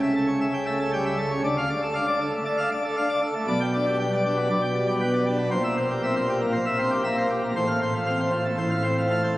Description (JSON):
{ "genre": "classical, organ toccata", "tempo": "117 BPM", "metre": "4/4", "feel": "straight", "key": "unclear", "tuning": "A4 = 440 Hz", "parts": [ { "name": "pipe organ, plenum", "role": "solo", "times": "0.0-9.4 s", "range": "A1 to G5", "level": "-22 LUFS", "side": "equal", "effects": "none" } ], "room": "wet cathedral reverb, RT60 4.4 s", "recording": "recorded on a phone in the room, club reverb", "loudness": "-22 LUFS", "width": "side -17 dB against mid", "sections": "0.0-9.4 A section", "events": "none", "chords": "0.0 A7/C#; 1.4 Dm; 3.5 G/B; 5.5 C7/Bb; 7.6 F/A", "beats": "0.41 0.92 | 1.43 1.95 2.46 2.97 | 3.48 3.99 4.49 5.00 | 5.51 6.02 6.53 7.04 | 7.55 8.06 8.58 9.10" }